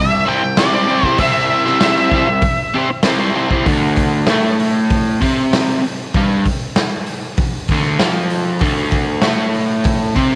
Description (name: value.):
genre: garage rock duo or trio.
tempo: 97 BPM.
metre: 4/4.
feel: straight.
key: D minor.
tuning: A4 = 443 Hz.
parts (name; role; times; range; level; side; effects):
octave-fuzz lead guitar; melody; 0.0-3.0 s; D5 to G5; -19 LUFS; equal; distortion, tape echo.
crunchy overdriven guitar; riff; 0.0-10.4 s; D2 to C5; -18 LUFS; equal; none.
raw garage drum kit; drums; 0.6-10.4 s; hi-hat, kick drum, snare drum; -21 LUFS; equal; none.
room: light reverb, studio reverb.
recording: none.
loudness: -16 LUFS.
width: mono.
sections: 0.0-3.7 A section; 3.7-10.4 B section.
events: none.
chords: 0.0 C; 3.7 Dm.